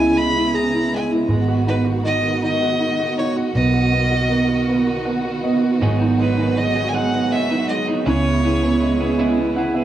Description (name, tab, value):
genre	six-eight pop ballad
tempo	53 BPM (dotted quarters)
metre	6/8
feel	straight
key	G# minor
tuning	A4 = 441 Hz
part	clear violin	melody	0.0-9.2 s	B4 to B5	-23 LUFS	right 1 dB	cassette tape, tape echo
part	felt-muted upright piano	accompaniment	0.0-9.8 s	C#3 to F#5	-21 LUFS	equal	cassette tape
part	warm studio string section	sustained chords	0.0-9.8 s	C#3 to A#4	-22 LUFS	right 3 dB	cassette tape
part	vintage muted fingered electric bass	bass	0.0-9.8 s	G#1 to C#2	-23 LUFS	right 1 dB	none
part	twelve-string electric guitar	arpeggios	5.8-9.8 s	G#2 to G#4	-23 LUFS	right 6 dB	spring reverb, cassette tape
room	wet booth ambience, RT60 0.2 s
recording	home recording on cassette, small room ambience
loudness	-16 LUFS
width	side -11 dB against mid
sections	0.0-9.8 A section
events	felt piano fill 4.7-5.8, 9.2-9.8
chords	0.0 C#m7; 1.3 G#m7; 3.5 Bmaj7; 5.8 G#m7; 8.1 C#m7